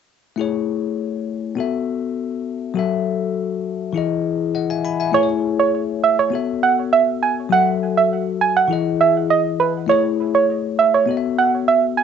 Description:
afrobeats; 101 BPM; 4/4; straight; A4 = 443 Hz
bell-like tine electric piano; accompaniment; 0.4-12.0 s; E3 to B5; -21 LUFS; left 9 dB; phaser, cassette tape
soft round pluck; melody; 5.1-12.0 s; B4 to G#5; -16 LUFS; right 7 dB; chorus, cassette tape
moderate studio reverb, RT60 0.6 s; home recording on cassette, nothing above 8.0 kHz; -17 LUFS; side -7 dB against mid
0.4-5.1 A section; 5.1-12.0 B section
0.4 Amaj7; 1.6 B7sus4; 2.8 F#m7; 4.0 Emaj7; 5.1 Amaj7; 6.3 B7sus4; 7.5 F#m7; 8.7 Emaj7; 9.9 Amaj7; 11.1 B7sus4

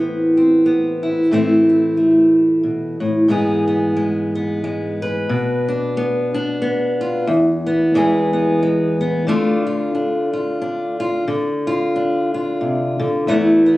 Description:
folk, solo fingerstyle acoustic guitar; 90 BPM; 3/4; swing 57% on 8ths; A harmonic minor; A4 = 439 Hz
fingerpicked steel-string acoustic guitar; solo; 0.0-13.8 s; E2 to B4; -15 LUFS; equal
light reverb; recorded on a phone in the room, club reverb; -15 LUFS; side -17 dB against mid
0.0-1.3 A section; 1.3-13.8 A section
0.0 Amadd9; 3.3 E/G#; 5.3 Bdim; 7.3 E5; 7.9 E; 9.3 Dm; 11.3 Csus24; 13.3 Esus4

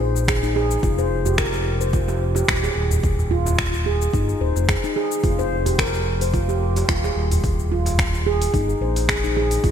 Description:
organic downtempo; 109 BPM; 4/4; swing 54% on 16ths; F minor; A4 = 437 Hz
handpan; arpeggios; 0.0-9.7 s; Eb4 to C5; -23 LUFS; right 1 dB; low-pass filter, ping-pong delay, shimmer reverb
smooth gliding synth bass; bass; 0.0-9.7 s; Eb1 to Bb1; -22 LUFS; equal
deep house drum kit; drums; 0.2-9.7 s; cabasa, finger snaps, hi-hat; -26 LUFS; left 1 dB; overdrive, gated reverb
darbuka; percussion; 0.2-9.5 s; -31 LUFS; right 1 dB
electronic kick drum; drums; 0.3-9.7 s; -24 LUFS; equal; overdrive
moderate lush hall reverb, RT60 2.9 s; bright 1980s-style digital production; -18 LUFS; side -9 dB against mid
0.0-9.7 A section
0.0 Fm7

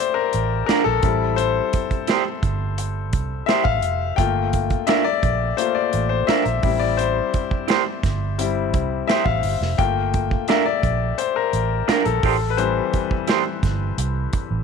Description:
lush 1970s-style soul; 86 BPM; 4/4; straight; A4 = 440 Hz
bright grand piano; accompaniment; 0.0-14.6 s; E3 to G5; -22 LUFS; left 12 dB
vintage muted fingered electric bass; bass; 0.3-14.6 s; F1 to C2; -24 LUFS; right 3 dB
modern studio drum kit; drums; 0.3-14.5 s; hi-hat, kick drum, snare drum; -25 LUFS; right 2 dB
electric guitar through a small old amp; riff; 0.7-13.4 s; D4 to C5; -23 LUFS; right 18 dB
small room reverb; 1960s-style stereo with parts hard left and right; -18 LUFS; side -6 dB against mid
0.0-14.6 A section
grand piano solo 0.0-14.6
0.0 Gm7; 1.0 Am7; 4.2 Gm7; 6.6 Am7; 9.8 Gm7; 12.2 Am7

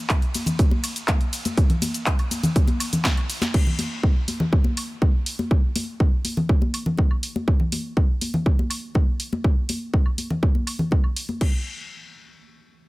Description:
house; 122 BPM; 4/4; straight
big-room dance drum kit; drums; 0.1-11.5 s; cabasa, crash cymbal, handclaps, hi-hat, ride cymbal, snare drum; -28 LUFS; equal; sidechain pumping on hats, sidechain pumping on perc, sidechain pumping on cymbals
electronic kick drum; drums; 0.1-11.5 s; -19 LUFS; equal
congas and woodblock; percussion; 0.4-11.4 s; -27 LUFS; left 1 dB; sidechain pumping on perc
little or no reverb; -20 LUFS; side -20 dB against mid
0.0-3.5 A section; 3.5-11.4 B section; 11.4-12.9 C section
drop 0.0-3.5; drum fill 3.0-3.5

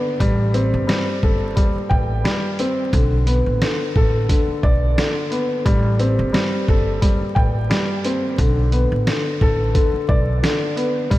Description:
hip hop, boom-bap hip-hop; 88 BPM; 4/4; swing 56% on 16ths; A4 = 441 Hz
warm upright piano; accompaniment; 0.0-11.2 s; D3 to G5; -21 LUFS; left 1 dB; cassette tape
upright bass; bass; 0.2-11.2 s; G1 to B1; -20 LUFS; equal
trip hop sampler-style drum kit; drums; 0.2-11.2 s; hi-hat, kick drum, snare drum; -20 LUFS; equal; vintage 12-bit sampler grit
light reverb, studio ambience; vinyl crackle; -16 LUFS; side -16 dB against mid
0.0-11.2 A section
0.2 Am7; 2.9 Bm7; 5.7 Am7; 8.4 Bm7

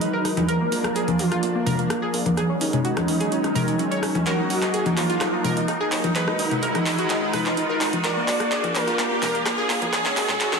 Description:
progressive house; 127 BPM; 4/4; straight; A4 = 444 Hz
wide unison lead; melody; 0.0-10.6 s; Eb4 to D5; -27 LUFS; equal; digital delay
lush unison pad; sustained chords; 0.0-10.6 s; F3 to Cb5; -29 LUFS; equal; chorus
analog pluck; arpeggios; 0.0-10.6 s; Bb3 to Db5; -27 LUFS; right 1 dB; chorus, digital delay
fat analog bass; bass; 0.0-10.6 s; Ab1 to Ab2; -39 LUFS; equal
big-room dance drum kit; drums; 0.0-10.6 s; handclaps, hi-hat; -28 LUFS; right 1 dB
riser; sound effects; 1.5-10.6 s; -31 LUFS; right 1 dB
electronic rim click and congas; percussion; 0.2-10.6 s; -26 LUFS; left 1 dB; soft clipping on snare
moderate lush hall reverb, RT60 1.7 s; dense, heavily limited modern master, high-pass filter; -20 LUFS; side -5 dB against mid
0.0-10.6 A section
build-up 0.0-10.6; filter sweep 0.0-10.6; riser 1.5-10.6; drum fill 4.3-10.6
0.5 Bb; 2.4 Dbsus4; 4.3 Ebm; 6.2 Abm7; 8.0 Bb; 9.9 Dbsus4

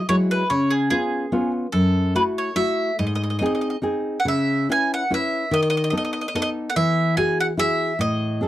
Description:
italian folk, Italian serenade; 144 BPM; 3/4; swing 54% on 8ths; C# minor; A4 = 439 Hz
bowl-back mandolin; melody; 0.0-8.5 s; G#4 to G#5; -23 LUFS; right 2 dB
nylon-string guitar; accompaniment; 0.1-8.5 s; F#2 to B4; -21 LUFS; left 1 dB
light reverb; dry, close 1970s-style studio recording; -19 LUFS; side -13 dB against mid
0.0-8.5 A section
0.0 Eadd9; 0.5 C#7; 1.8 F#m7; 3.0 G#; 4.3 C#m7; 5.5 B7/D#; 6.8 Eadd9

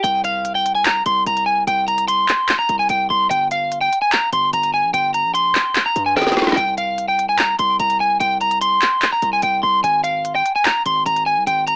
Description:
hip hop, trap; 147 BPM; 4/4; half-time; A4 = 439 Hz
electric guitar at the edge of break-up; melody; 0.0-11.8 s; F5 to C6; -16 LUFS; equal
hard-hitting 808-style bass; bass; 0.0-11.8 s; G1 to G2; -30 LUFS; equal
trap drum kit; drums; 0.0-11.8 s; handclaps, hi-hat, snare drum; -19 LUFS; equal; overdrive, cassette tape
light reverb; home recording on cassette, small speaker sound; -15 LUFS; side -39 dB against mid
0.0-11.8 A section
drum fill 6.2-6.6

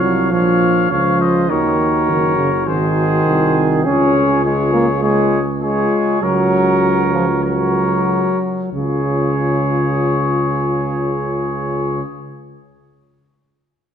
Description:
classical, brass quintet; 89-103 BPM; 4/4; rubato; Db major; A4 = 442 Hz
clear trumpet; melody; 0.0-12.0 s; C5 to F5; -22 LUFS; left 6 dB
clear trumpet; second line; 0.0-12.0 s; Ab4 to Db5; -22 LUFS; right 6 dB
clear trombone; accompaniment; 0.0-12.0 s; Db3 to Db4; -18 LUFS; right 1 dB
warm French horn; accompaniment; 0.0-12.0 s; F4 to Gb4; -23 LUFS; left 6 dB
warm tuba; bass; 0.0-12.0 s; Gb1 to Eb2; -20 LUFS; right 2 dB
wet concert hall reverb, RT60 1.9 s; dark, warm production; -14 LUFS; side -8 dB against mid
0.0-8.7 A section; 8.7-11.3 B section
slowing down 2.7-8.7
0.3 Bbm; 1.5 Ebm7; 2.7 Ab7; 3.8 Db; 6.2 Gb/Db; 8.7 Db

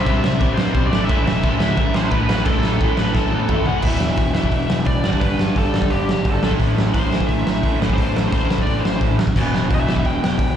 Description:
punk rock; 174 BPM; 4/4; straight; A minor; A4 = 440 Hz
biting lead guitar; melody; 0.0-10.5 s; G4 to G5; -26 LUFS; left 1 dB; overdrive, slapback echo
crunchy overdriven guitar; riff; 0.0-10.6 s; E2 to C4; -23 LUFS; left 11 dB
raw garage guitar; riff; 0.0-10.6 s; E2 to C4; -25 LUFS; right 14 dB; overdrive, slapback echo
growling picked electric bass; bass; 0.0-10.5 s; E1 to G2; -23 LUFS; right 1 dB; overdrive
raw garage drum kit; drums; 0.1-10.5 s; crash cymbal, hi-hat, kick drum, snare drum, toms; -20 LUFS; right 1 dB
little or no reverb; live gig heard through the venue's PA, club reverb; -16 LUFS; side -9 dB against mid
0.0-3.8 A section; 3.8-10.6 B section
drum fill 3.2-3.8
0.0 C; 0.9 A5; 3.8 E5; 5.1 G; 6.4 Am; 9.4 Em

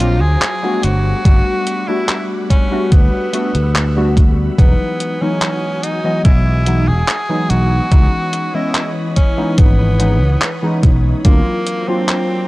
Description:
vaporwave; 72 BPM; 4/4; straight; E major; A4 = 441 Hz
edgy tenor saxophone; melody; 0.0-12.5 s; A#3 to G#4; -22 LUFS; equal; tape echo
warbly lo-fi synth keys; accompaniment; 0.0-12.5 s; E3 to D#5; -19 LUFS; left 1 dB; analog chorus
soft string machine; sustained chords; 0.0-12.5 s; E3 to E6; -27 LUFS; equal; ensemble chorus
fingered electric bass; bass; 0.0-11.4 s; E1 to D2; -15 LUFS; equal; tube saturation
detuned 8-bit digital drum machine; drums; 0.0-12.3 s; handclaps, hi-hat; -20 LUFS; equal
electronic kick drum; drums; 1.3-11.4 s; -11 LUFS; equal
little or no reverb; dry, gritty hardware recording, cassette tape; -12 LUFS; side -19 dB against mid
0.0-12.5 A section
0.0 D7alt; 0.8 Gmaj7; 4.6 Emaj9; 7.9 C#m9; 11.3 D7alt

